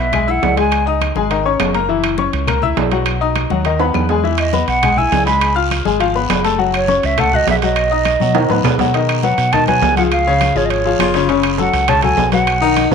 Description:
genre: latin, salsa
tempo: 204 BPM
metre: 4/4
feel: straight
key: unclear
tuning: A4 = 440 Hz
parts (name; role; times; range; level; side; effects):
- concert flute; melody; 0.0-0.9, 4.4-12.9 s; C#5 to B5; -17 LUFS; right 3 dB; none
- bright baby grand piano; accompaniment; 0.0-12.9 s; C#3 to F#6; -17 LUFS; left 8 dB; none
- deep dub fingered electric bass; bass; 0.0-12.9 s; F#1 to B2; -20 LUFS; right 3 dB; none
- claves; percussion; 0.1-12.9 s; none; -29 LUFS; left 12 dB; none
- congas; percussion; 0.1-12.9 s; none; -24 LUFS; left 8 dB; none
- timbales; percussion; 0.1-12.9 s; none; -21 LUFS; right 16 dB; none
- guiro; percussion; 4.3-12.9 s; none; -30 LUFS; right 16 dB; none
- breathy baritone saxophone; second line; 11.0-12.9 s; B3 to E#4; -19 LUFS; left 7 dB; none
room: light reverb, small room ambience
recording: 1960s-style stereo with parts hard left and right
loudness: -13 LUFS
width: side -6 dB against mid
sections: 0.0-8.9 A section; 8.9-12.9 B section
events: drum fill 3.8-4.2, 8.2-8.9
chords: 0.0 E6; 0.7 C#sus2; 1.9 F#7; 3.1 B; 4.2 Emaj7; 5.4 C#7; 6.6 F#m; 7.8 B; 10.1 C#; 11.3 F#m

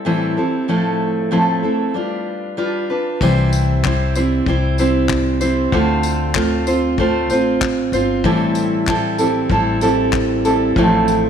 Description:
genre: acoustic pop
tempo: 95 BPM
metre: 4/4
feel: swing 55% on 16ths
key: C major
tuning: A4 = 441 Hz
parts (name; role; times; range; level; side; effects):
- picked steel-string acoustic guitar; accompaniment; 0.0-11.3 s; A2 to C5; -16 LUFS; right 1 dB; none
- upright bass; bass; 3.2-11.3 s; G1 to D2; -21 LUFS; left 1 dB; none
- soft brush drum kit; drums; 3.2-11.2 s; crash cymbal, handclaps, kick drum, tambourine; -24 LUFS; left 4 dB; none
room: moderate echo chamber reverb, RT60 2.1 s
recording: 1960s-style stereo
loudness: -15 LUFS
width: side -8 dB against mid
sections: 0.0-3.2 A section; 3.2-11.3 B section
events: none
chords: 0.0 Am7; 0.7 Fmaj7/A; 1.9 G7; 3.2 C; 5.7 Dm7; 8.2 Am7; 10.8 Fmaj7/A

